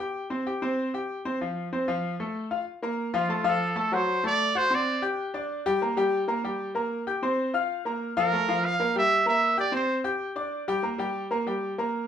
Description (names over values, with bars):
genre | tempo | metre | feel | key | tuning
latin | 191 BPM | 4/4 | straight | unclear | A4 = 440 Hz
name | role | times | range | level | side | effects
bright concert grand piano | accompaniment | 0.0-12.0 s | F3 to G6 | -26 LUFS | left 2 dB | none
bright trumpet | melody | 3.2-5.0, 8.2-10.0 s | F4 to F5 | -24 LUFS | right 2 dB | none
room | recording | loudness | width
wet studio reverb, RT60 0.6 s | heard from further back in the room | -24 LUFS | side -9 dB against mid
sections
0.0-2.7 A section; 2.7-12.1 B section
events
none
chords
0.2 C5; 1.4 F; 2.7 Bb5; 3.9 D7; 5.2 Gm; 6.4 C5; 7.7 Bb5; 9.0 C7; 10.2 Gm; 11.5 N.C.